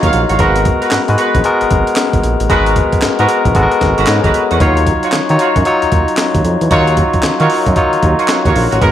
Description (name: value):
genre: R&B, new jack swing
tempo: 114 BPM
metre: 4/4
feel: swing 63% on 16ths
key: Eb minor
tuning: A4 = 440 Hz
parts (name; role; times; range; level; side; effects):
- barky tine electric piano; accompaniment; 0.0-8.9 s; Gb3 to Gb5; -13 LUFS; left 2 dB; medium stereo tremolo
- warm horn section; stabs; 0.0-8.9 s; Cb4 to F5; -18 LUFS; right 3 dB; analog delay
- smooth synth bass; bass; 0.0-8.9 s; Ab1 to Eb3; -16 LUFS; right 1 dB; none
- breakbeat sampler-style drum kit; drums; 0.0-8.9 s; handclaps, hi-hat, kick drum, snare drum; -17 LUFS; right 1 dB; none
room: moderate plate reverb, RT60 1.5 s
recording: dreamy mix soaked in reverb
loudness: -10 LUFS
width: side -11 dB against mid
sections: 0.0-8.9 A section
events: none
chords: 0.4 Abm9; 4.6 Ebm9